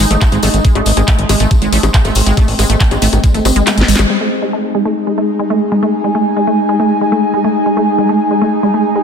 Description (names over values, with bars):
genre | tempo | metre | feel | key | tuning
psychedelic trance | 139 BPM | 4/4 | straight | Ab major | A4 = 438 Hz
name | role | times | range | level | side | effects
overtone-sweeping drone | sustained chords | 0.0-9.0 s | Ab3 to Eb4 | -18 LUFS | left 1 dB | chorus, built-in reverb, sidechain pumping
wide unison pluck | riff | 0.0-9.0 s | Ab3 to C4 | -16 LUFS | moving between left 2 dB and right 4 dB | auto-pan, sidechain pumping, ping-pong delay
fat analog bass | bass | 0.0-4.1 s | Ab1 to A1 | -13 LUFS | equal | none
drum and bass drum kit | drums | 0.0-4.1 s | bongos, handclaps, hi-hat, snare drum | -17 LUFS | left 3 dB | low-pass filter on hats, low-pass filter on perc, low-pass filter on snare, low-pass filter on room
tambourine | percussion | 0.0-4.1 s | none | -25 LUFS | left 3 dB | none
electronic kick drum | drums | 0.2-3.3 s | none | -11 LUFS | equal | none
airy breathy pad | texture | 4.1-9.0 s | Eb4 to Ab5 | -17 LUFS | equal | chorus, sidechain pumping
room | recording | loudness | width
moderate lush hall reverb, RT60 2.0 s, digital ambience | dense, heavily limited modern master | -10 LUFS | side -7 dB against mid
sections
0.0-4.1 A section; 4.1-9.0 B section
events
kick drops out 3.7-4.1; drum fill 3.7-4.1; band accent 4.0; filter sweep on synth arpeggio sound 4.1-9.0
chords
0.0 Ab5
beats
0.21 | 0.65 1.08 1.51 1.94 | 2.37 2.80 3.24 3.67 | 4.10 4.53 4.96 5.39 | 5.83 6.26 6.69 7.12 | 7.55 7.98 8.42 8.85